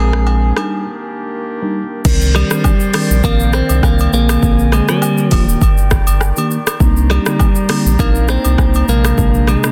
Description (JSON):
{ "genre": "afrobeats", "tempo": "101 BPM", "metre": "4/4", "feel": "swing 55% on 16ths", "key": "C minor", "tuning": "A4 = 440 Hz", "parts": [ { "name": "direct-recorded clean electric guitar", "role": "melody", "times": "0.0-9.7 s", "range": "G3 to Ab4", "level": "-22 LUFS", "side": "equal", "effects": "spring reverb, tape echo" }, { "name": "mellow tine electric piano", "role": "accompaniment", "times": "0.0-9.7 s", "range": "C3 to Bb4", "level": "-21 LUFS", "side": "equal", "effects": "subtle chorus" }, { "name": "mellow woodwind section", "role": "sustained chords", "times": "0.0-9.7 s", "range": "Eb3 to Bb5", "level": "-28 LUFS", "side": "equal", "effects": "none" }, { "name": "warm sub bass", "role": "bass", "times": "0.0-9.6 s", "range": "Eb1 to C2", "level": "-16 LUFS", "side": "equal", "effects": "none" }, { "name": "afro-pop drum kit", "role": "drums", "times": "0.1-9.7 s", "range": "crash cymbal, hi-hat, kick drum, rim click, shaker", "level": "-18 LUFS", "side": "equal", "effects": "overdrive" }, { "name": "agogo bells and woodblock", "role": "percussion", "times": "0.3-9.6 s", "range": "none", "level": "-28 LUFS", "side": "equal", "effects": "none" } ], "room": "little or no reverb", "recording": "dense, heavily limited modern master", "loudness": "-14 LUFS", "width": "mono", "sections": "0.0-2.0 A section; 2.0-9.7 B section", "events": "break 0.9-2.0", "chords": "0.0 Bb9; 0.6 Ebmaj7; 2.0 Cm9; 4.1 Bb9; 5.3 Ebmaj7; 6.8 Cm9; 8.9 Bb9" }